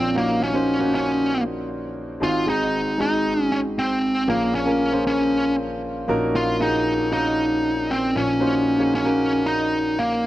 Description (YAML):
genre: pop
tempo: 116 BPM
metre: 4/4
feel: straight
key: unclear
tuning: A4 = 440 Hz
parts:
  - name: smooth overdriven lead guitar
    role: melody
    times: 0.0-10.3 s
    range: Bb3 to F4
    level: -21 LUFS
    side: equal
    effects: none
  - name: warm concert grand piano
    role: accompaniment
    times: 0.0-10.3 s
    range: Ab1 to Db5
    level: -23 LUFS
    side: equal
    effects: none
room: light reverb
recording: dark, warm production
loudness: -19 LUFS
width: side -15 dB against mid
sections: 0.0-10.3 A section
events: none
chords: 0.0 Ebm7/Bb; 2.2 Ab7; 4.3 Bbm7; 6.1 Ebm7/Bb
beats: | 0.15 0.67 1.18 1.70 | 2.22 2.73 3.25 3.77 | 4.28 4.80 5.31 5.83 | 6.35 6.86 7.38 7.89 | 8.41 8.93 9.44 9.96